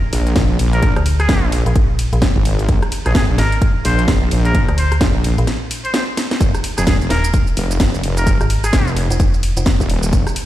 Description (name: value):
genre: bass house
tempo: 129 BPM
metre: 4/4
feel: swing 60% on 16ths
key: unclear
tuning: A4 = 440 Hz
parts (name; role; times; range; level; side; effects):
- metallic FM bass; bass; 0.0-9.8 s; Eb1 to D2; -17 LUFS; equal; tube saturation, sidechain pumping
- wobble bass; bass; 0.1-10.2 s; Eb1 to Bb1; -16 LUFS; equal; chorus, overdrive, sidechain pumping
- house drum kit; drums; 0.1-10.5 s; hi-hat, ride cymbal, rim click, snare drum; -22 LUFS; equal; none
- electronic kick drum; drums; 0.4-10.2 s; none; -16 LUFS; equal; none
- trumpet with straight mute; melody; 0.7-9.0 s; Ab4 to C5; -24 LUFS; equal; digital delay
- maracas; percussion; 6.4-10.3 s; none; -30 LUFS; right 5 dB; none
room: little or no reverb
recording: played on a big sound system in a bare room, large studio reverb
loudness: -13 LUFS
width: side -14 dB against mid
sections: 0.0-10.5 A section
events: break 5.5-6.4; drum fill 6.2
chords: none